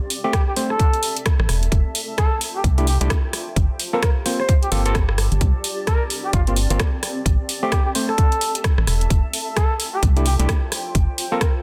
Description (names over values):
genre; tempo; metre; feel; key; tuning
UK garage, two-step garage; 130 BPM; 4/4; swing 60% on 16ths; G dorian; A4 = 442 Hz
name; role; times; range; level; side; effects
granular cloud pad; texture; 0.0-11.6 s; C4 to A5; -35 LUFS; equal; built-in reverb, sidechain pumping
garage drum kit; drums; 0.1-11.5 s; hi-hat, rim click; -28 LUFS; equal; soft clipping on snare
overdriven tine electric piano; stabs; 0.2-11.4 s; A3 to C5; -28 LUFS; equal; dub echo
trumpet with bucket mute; melody; 0.3-11.5 s; F4 to C5; -28 LUFS; equal; dub echo
electronic kick drum; drums; 0.3-11.5 s; none; -21 LUFS; equal; none
organ-like FM bass; bass; 1.4-11.1 s; E1 to C2; -21 LUFS; equal; sidechain pumping
room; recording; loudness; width
light reverb; dense, heavily limited modern master; -20 LUFS; mono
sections
0.0-11.6 A section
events
none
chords
0.0 Am7; 1.7 Fmaj9; 3.3 Gm11; 7.3 Am7; 9.1 Fmaj9; 10.7 G7sus4